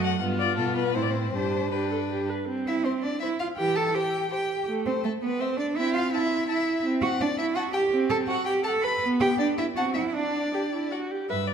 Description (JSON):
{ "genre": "quick classical-period movement for string quartet", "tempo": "164 BPM", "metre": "3/4", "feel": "rubato", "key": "C major", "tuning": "A4 = 440 Hz", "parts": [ { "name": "rich violin", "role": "melody", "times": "0.0-11.5 s", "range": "A4 to A5", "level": "-33 LUFS", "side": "left 10 dB", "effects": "none" }, { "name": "rich violin", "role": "second line", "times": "0.0-10.9 s", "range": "A3 to B5", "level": "-31 LUFS", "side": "left 4 dB", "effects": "none" }, { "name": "rich viola", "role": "accompaniment", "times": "0.0-11.5 s", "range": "E3 to B4", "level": "-30 LUFS", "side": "right 2 dB", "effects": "none" }, { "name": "rich cello", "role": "bass", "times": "0.0-11.5 s", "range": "F#2 to B4", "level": "-27 LUFS", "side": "right 4 dB", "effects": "none" } ], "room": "moderate concert hall reverb, RT60 1.9 s", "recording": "none", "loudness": "-24 LUFS", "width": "side -7 dB against mid", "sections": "0.0-2.5 A section; 2.5-11.3 B section", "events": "none", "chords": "0.2 G7; 1.0 Am; 1.3 G; 2.5 C; 3.6 C/E (rootless); 4.7 Am; 5.8 Am/C (rootless); 7.9 Am13/C; 9.0 G/B; 9.8 Am/C; 10.1 N.C." }